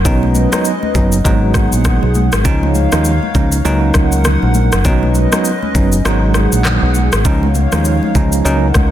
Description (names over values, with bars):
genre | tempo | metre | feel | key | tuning
afrobeats | 100 BPM | 4/4 | swing 58% on 16ths | Db mixolydian | A4 = 440 Hz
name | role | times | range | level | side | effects
hollow soft pad | sustained chords | 0.0-8.9 s | Cb4 to Gb5 | -21 LUFS | equal | chorus
fingered electric bass | bass | 0.0-8.9 s | Gb1 to Eb2 | -14 LUFS | equal | none
congas | percussion | 0.0-8.9 s | none | -24 LUFS | left 4 dB | none
bell-like tine electric piano | accompaniment | 0.1-8.7 s | F3 to Eb4 | -17 LUFS | right 3 dB | medium stereo tremolo
afro-pop drum kit | drums | 0.1-8.9 s | handclaps, kick drum, rim click, shaker | -17 LUFS | equal | soft clipping on snare
room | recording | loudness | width
light reverb | dense, heavily limited modern master | -11 LUFS | side -12 dB against mid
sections
0.0-7.2 A section; 7.2-8.9 B section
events
kick muted 6.0-7.2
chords
0.1 Cbadd9; 1.2 Abm7; 2.5 Dbadd9; 3.6 Gb6/Db; 4.8 Cbadd9; 6.0 Abm7; 7.2 Dbadd9